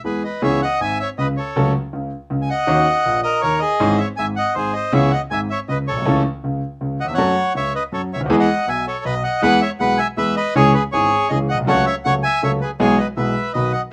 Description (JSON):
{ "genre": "tango", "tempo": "160 BPM", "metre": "3/4", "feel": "rubato", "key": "C# minor, E major from 9.4 s", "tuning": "A4 = 440 Hz", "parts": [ { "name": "clear concert grand piano", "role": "accompaniment", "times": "0.0-13.7 s", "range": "G#1 to A4", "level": "-22 LUFS", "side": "equal", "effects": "none" }, { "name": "bandoneon", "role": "melody", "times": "0.1-13.8 s", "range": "G#4 to G#5", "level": "-21 LUFS", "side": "equal", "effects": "none" } ], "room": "light reverb", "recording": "none", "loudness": "-19 LUFS", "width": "mono", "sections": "0.4-9.4 A section; 9.4-13.9 B section", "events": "none", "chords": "0.4 C#m7; 1.6 F#m/C#; 2.7 D#m7; 3.8 C#m/G#; 4.6 G#; 4.9 C#m7; 6.1 A/C#; 7.2 F#m; 8.3 E; 9.1 B; 9.4 E; 10.6 C#m; 11.7 F#m/C#; 12.8 E/B; 13.5 B", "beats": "0.05 | 0.43 0.81 1.18 | 1.56 1.93 2.31 | 2.68 3.06 3.43 | 3.80 4.18 4.56 | 4.93 5.31 5.69 | 6.06 6.44 6.81 | 7.18 7.55 7.93 | 8.30 8.68 9.05 | 9.43 9.80 10.18 | 10.55 10.93 11.30 | 11.68 12.05 12.42 | 12.79 13.17 13.54" }